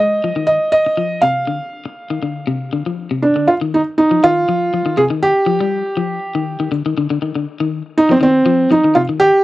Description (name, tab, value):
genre	afrobeat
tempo	120 BPM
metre	4/4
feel	straight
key	unclear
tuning	A4 = 439 Hz
part	felt-muted upright piano	melody	0.0-9.4 s	C4 to F5	-13 LUFS	right 1 dB	none
part	electric guitar at the edge of break-up	arpeggios	0.0-9.3 s	C3 to Ab3	-20 LUFS	left 5 dB	spring reverb
room	little or no reverb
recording	dry, close 1970s-style studio recording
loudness	-13 LUFS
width	side -16 dB against mid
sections	0.0-3.5 A section; 3.5-9.4 B section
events	none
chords	0.0 Fm7; 1.5 Csus24; 3.5 F5; 5.5 G5; 7.5 F5